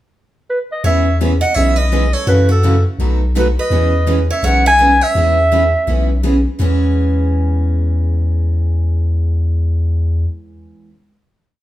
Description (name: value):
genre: acoustic string swing (jazz manouche)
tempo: 166 BPM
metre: 4/4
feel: swing 61% on 8ths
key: E major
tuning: A4 = 440 Hz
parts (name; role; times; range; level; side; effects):
- mellow clarinet; melody; 0.5-6.2 s; A4 to G#5; -15 LUFS; right 1 dB; none
- picked steel-string acoustic guitar; second line; 0.8-6.2 s; F#4 to E5; -23 LUFS; right 4 dB; none
- picked steel-string acoustic guitar; accompaniment; 0.8-10.9 s; B2 to G#4; -22 LUFS; left 3 dB; none
- picked steel-string acoustic guitar; accompaniment; 0.8-10.9 s; B2 to B4; -24 LUFS; right 7 dB; none
- punchy sub bass; bass; 0.8-10.3 s; B1 to F#2; -15 LUFS; equal; none
room: light reverb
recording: band playing live in one room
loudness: -12 LUFS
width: side -14 dB against mid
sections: 0.0-0.8 pickup bar; 0.8-6.6 A section; 6.6-9.5 final chord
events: none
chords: 0.0 N.C.; 0.8 E6; 2.3 F#m7; 3.0 B7; 3.7 E6